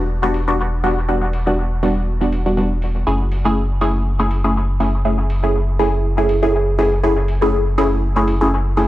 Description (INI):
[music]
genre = dub techno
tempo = 121 BPM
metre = 4/4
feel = swing 55% on 16ths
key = unclear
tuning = A4 = 440 Hz
[part]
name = filtered dub chord stab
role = stabs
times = 0.0-8.9 s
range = G3 to G#4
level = -18 LUFS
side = equal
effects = phaser, dub echo
[part]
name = soft dub sub bass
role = bass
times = 0.0-8.9 s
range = E1 to F#1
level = -19 LUFS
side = equal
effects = tube saturation
[part]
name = electronic hi-hat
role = drums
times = 0.3-8.9 s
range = none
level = -43 LUFS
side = left 1 dB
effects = overdrive, low-pass filter on hats
[sound]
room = digital ambience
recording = dry, gritty hardware recording, transformer saturation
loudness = -15 LUFS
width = side -15 dB against mid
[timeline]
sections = 0.0-8.9 A section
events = none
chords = 0.0 Em7; 3.1 F#m7